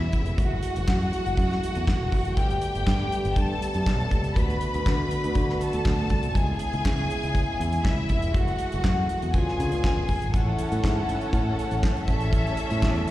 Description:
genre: disco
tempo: 120 BPM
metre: 4/4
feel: straight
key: F# minor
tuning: A4 = 440 Hz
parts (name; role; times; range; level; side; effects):
- rich studio string section; second line; 0.0-13.1 s; C#4 to B5; -30 LUFS; left 1 dB; slapback echo
- warm French horn section; sustained chords; 0.0-13.1 s; C#3 to G4; -31 LUFS; equal; none
- modern bright fingered electric bass; bass; 0.0-13.0 s; E1 to D3; -26 LUFS; equal; none
- damped 70s drum kit; drums; 0.1-13.1 s; handclaps, hi-hat, kick drum, snare drum; -26 LUFS; equal; none
room: light reverb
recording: live gig heard through the venue's PA, recital hall reverb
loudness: -22 LUFS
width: side -15 dB against mid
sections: 0.0-10.3 A section; 10.3-13.1 B section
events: none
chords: 0.4 F#m9; 2.4 Gadd9; 4.4 D6; 6.4 C#m7; 8.3 F#m9; 9.3 C#7b9; 10.3 A; 12.1 A7

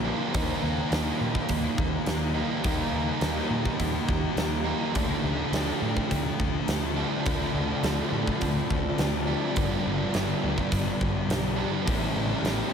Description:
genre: rock, shoegaze and dream pop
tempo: 104 BPM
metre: 4/4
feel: straight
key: D phrygian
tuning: A4 = 440 Hz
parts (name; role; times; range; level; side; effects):
- granular cloud pad; sustained chords; 0.0-12.7 s; B3 to Bb5; -37 LUFS; left 1 dB; built-in reverb
- biting overdriven guitar; riff; 0.0-12.7 s; G2 to E4; -30 LUFS; right 10 dB; reverse reverb
- thick fuzz guitar; riff; 0.0-12.7 s; G2 to Eb4; -30 LUFS; left 9 dB; distortion, analog chorus
- vintage muted picked electric bass; bass; 0.0-12.6 s; G1 to Bb2; -32 LUFS; equal; none
- huge arena drum kit; drums; 0.3-12.6 s; hi-hat, kick drum, snare drum; -30 LUFS; equal; none
room: light reverb, studio reverb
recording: none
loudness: -24 LUFS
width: side -7 dB against mid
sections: 0.0-12.7 A section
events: none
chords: 0.3 Ebadd9; 5.0 Dm7; 9.6 G; 11.9 A7

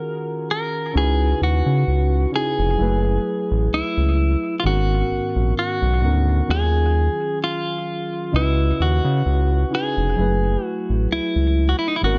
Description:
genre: contemporary R&B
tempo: 65 BPM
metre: 4/4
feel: swing 54% on 16ths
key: unclear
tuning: A4 = 440 Hz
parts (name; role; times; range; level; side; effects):
- clean electric guitar; melody; 0.0-12.2 s; Eb4 to Bb4; -26 LUFS; equal; analog delay
- muted felt-like synth keys; accompaniment; 0.0-12.2 s; Ab2 to Gb5; -28 LUFS; equal; chorus, analog delay
- round analog bass; bass; 0.9-12.2 s; F1 to Db3; -21 LUFS; equal; none
room: little or no reverb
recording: echo-heavy mix, nothing above 7.9 kHz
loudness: -20 LUFS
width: mono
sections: 0.0-12.2 A section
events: none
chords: 0.0 Ebm11; 0.9 Dbm11; 2.8 Gbm11; 4.6 Abm11; 6.5 Ebm11; 8.3 Dbm11; 10.2 Gbm11

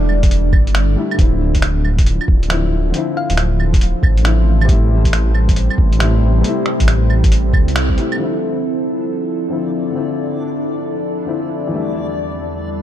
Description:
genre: future garage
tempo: 137 BPM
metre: 4/4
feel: swing 65% on 16ths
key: D minor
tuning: A4 = 439 Hz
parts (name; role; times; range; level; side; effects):
- felt-muted upright piano; accompaniment; 0.0-12.8 s; E2 to E4; -23 LUFS; left 4 dB; sidechain pumping, low-pass filter, tape echo
- warbly tape-like pad; sustained chords; 0.0-12.8 s; E2 to D5; -22 LUFS; equal; chorus, built-in reverb, phaser, sidechain pumping
- dark detuned saw bass; bass; 0.0-8.0 s; D1 to D2; -15 LUFS; equal; sidechain pumping
- lo-fi sampler-style drum kit; drums; 0.1-8.2 s; claves, finger snaps, hi-hat; -23 LUFS; right 1 dB; overdrive
- electronic kick drum; drums; 0.2-8.0 s; none; -13 LUFS; equal; overdrive
- thumb-piano-like synth pluck; melody; 3.2-3.4 s; F5; -28 LUFS; left 3 dB; chorus, cassette tape, tape echo
- backwards swelling texture; texture; 9.0-12.8 s; D4 to D5; -29 LUFS; equal; built-in reverb
room: light reverb, digital ambience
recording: dark, warm production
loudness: -14 LUFS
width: side -11 dB against mid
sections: 0.0-8.2 A section; 8.2-12.8 B section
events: band accent 7.8; filter sweep on felt piano 8.2-12.8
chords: 0.0 A7sus4/E; 1.2 Dm9; 4.7 Am7; 8.2 Dm9; 11.7 A7sus4/E

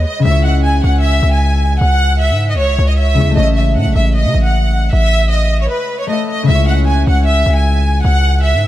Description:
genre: hip hop, trap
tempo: 154 BPM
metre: 4/4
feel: half-time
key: C# minor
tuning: A4 = 440 Hz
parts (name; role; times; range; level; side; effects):
- concert harp; accompaniment; 0.0-8.7 s; C#3 to E5; -19 LUFS; left 3 dB; none
- distorted 808-style bass; bass; 0.0-8.7 s; A1 to C#3; -12 LUFS; equal; distortion
- warm studio violin section; melody; 0.1-8.7 s; B4 to G#5; -17 LUFS; equal; analog delay
room: light reverb, small room ambience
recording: none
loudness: -11 LUFS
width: side -14 dB against mid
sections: 0.0-6.5 A section; 6.5-8.7 B section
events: break 5.7-6.5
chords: 0.3 C#m; 3.4 A; 6.5 C#m

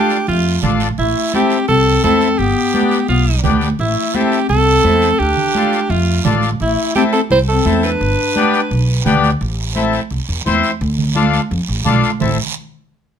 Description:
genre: latin, cumbia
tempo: 171 BPM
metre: 4/4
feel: straight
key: A minor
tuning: A4 = 441 Hz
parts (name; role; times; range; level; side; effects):
- bright alto saxophone; melody; 0.0-9.1 s; E4 to C5; -16 LUFS; right 3 dB; plate reverb
- breathy clarinet; second line; 0.0-9.1 s; A3 to E4; -20 LUFS; left 10 dB; none
- accordion; accompaniment; 0.0-12.4 s; B3 to C5; -18 LUFS; left 6 dB; none
- guiro; percussion; 0.1-12.3 s; none; -27 LUFS; right 7 dB; none
- upright bass; bass; 0.3-12.4 s; G1 to F2; -17 LUFS; equal; none
- congas; percussion; 0.3-12.3 s; none; -21 LUFS; right 6 dB; none
room: light reverb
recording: close, detailed microphones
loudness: -13 LUFS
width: side -8 dB against mid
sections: 0.0-9.4 A section; 9.4-12.2 B section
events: none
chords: 0.0 Dm; 1.0 Am; 2.4 G; 3.8 Am; 5.2 Dm; 6.6 Am; 8.0 G; 9.4 Am; 10.8 Dm; 12.2 Am

